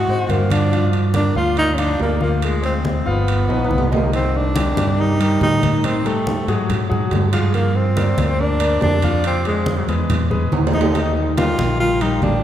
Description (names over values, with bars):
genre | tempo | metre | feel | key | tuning
Afro-Cuban jazz | 141 BPM | 4/4 | straight | G minor, C minor from 4.1 s | A4 = 442 Hz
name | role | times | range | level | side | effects
breathy tenor saxophone | melody | 0.0-12.4 s | Ab3 to F#4 | -21 LUFS | equal | none
fingered electric bass | bass | 0.0-12.4 s | G1 to A2 | -20 LUFS | right 1 dB | none
clear grand piano | accompaniment | 0.1-12.4 s | D#3 to F5 | -24 LUFS | left 4 dB | none
congas | percussion | 0.1-12.4 s | none | -24 LUFS | left 1 dB | none
timbales | percussion | 0.3-12.4 s | none | -26 LUFS | right 4 dB | none
room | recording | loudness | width
wet church reverb, RT60 3.2 s | recorded in a church or concert hall | -16 LUFS | side -11 dB against mid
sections
0.0-4.1 A section; 4.1-12.4 B section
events
drum fill 3.5-4.1, 10.5-10.9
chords
0.0 Ab7; 0.7 Gm7; 2.4 Dm7b5; 3.3 G7alt; 4.1 Cm9; 5.8 Ab7b9; 6.7 Fmadd9; 7.5 Gm7; 9.2 Fm; 10.1 E; 10.9 Ebadd9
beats
0.29 | 0.72 1.15 1.57 2.00 | 2.43 2.85 3.28 3.71 | 4.13 4.56 4.99 5.41 | 5.84 6.26 6.69 7.12 | 7.54 7.97 8.39 8.82 | 9.25 9.67 10.10 10.52 | 10.95 11.37 11.80 12.23